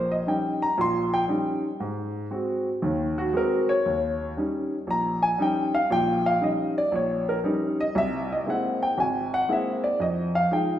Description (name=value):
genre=jazz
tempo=117 BPM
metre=4/4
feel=swing 68% on 8ths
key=Eb mixolydian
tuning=A4 = 440 Hz
part: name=warm grand piano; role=solo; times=0.0-10.8 s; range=G#1 to C6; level=-23 LUFS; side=equal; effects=none
room=wet recital hall reverb, RT60 1.7 s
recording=recorded in a church or concert hall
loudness=-23 LUFS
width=side -11 dB against mid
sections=0.0-10.8 A section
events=grand piano solo 0.0-10.8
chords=0.0 Eb7; 1.8 Ab7; 3.8 Eb7; 7.9 Caug7; 10.0 Fm7